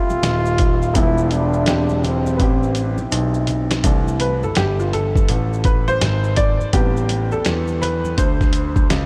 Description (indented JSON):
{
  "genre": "hip hop, jazz-hop",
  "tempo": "83 BPM",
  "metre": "4/4",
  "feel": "swing 63% on 16ths",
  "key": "C major",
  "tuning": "A4 = 440 Hz",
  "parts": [
    { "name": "mellow trombone", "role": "melody", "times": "0.0-3.5 s", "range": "B#3 to F4", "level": "-25 LUFS", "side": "equal", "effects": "diffuse ambient delay" },
    { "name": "warm upright piano", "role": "accompaniment", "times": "0.0-8.9 s", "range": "E3 to E5", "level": "-26 LUFS", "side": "equal", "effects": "subtle chorus" },
    { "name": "dark grand piano", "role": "bass", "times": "0.1-9.1 s", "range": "Eb1 to E2", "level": "-23 LUFS", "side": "equal", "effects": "none" },
    { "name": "congas and maracas", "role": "percussion", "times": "0.1-9.1 s", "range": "none", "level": "-39 LUFS", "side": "equal", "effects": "none" },
    { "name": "lo-fi sampler-style drum kit", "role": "drums", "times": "0.2-9.1 s", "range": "hi-hat, kick drum, snare drum", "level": "-22 LUFS", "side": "equal", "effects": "none" }
  ],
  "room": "moderate huge ambient reverb, RT60 8.8 s",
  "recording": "dreamy mix soaked in reverb",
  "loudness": "-18 LUFS",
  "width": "mono",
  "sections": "0.0-3.8 A section; 3.8-9.1 B section",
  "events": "drum fill 2.4-3.8; upright piano solo 3.8-9.1",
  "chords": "0.0 Fmaj7; 0.9 Em7; 1.7 E7alt; 2.4 Am9; 3.8 C69; 6.7 Am11",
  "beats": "0.23 | 0.95 1.67 2.40 3.12 | 3.84 4.57 5.29 6.01 | 6.73 7.46 8.18 8.90"
}